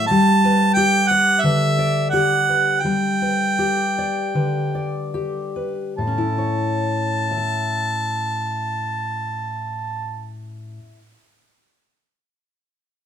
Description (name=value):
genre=acoustic folk duo or small band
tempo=68-91 BPM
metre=4/4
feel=straight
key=A major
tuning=A4 = 440 Hz
part: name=warm harmonica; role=melody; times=0.0-10.3 s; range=E5 to A5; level=-20 LUFS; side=right 3 dB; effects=none
part: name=fingerpicked steel-string acoustic guitar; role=accompaniment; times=0.0-11.0 s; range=A2 to A5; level=-22 LUFS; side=left 2 dB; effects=none
room=wet large studio reverb, RT60 1.1 s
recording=none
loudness=-18 LUFS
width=side -8 dB against mid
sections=0.0-6.0 A section; 6.0-9.5 B section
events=slowing down 0.1-6.0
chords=0.1 G; 6.0 A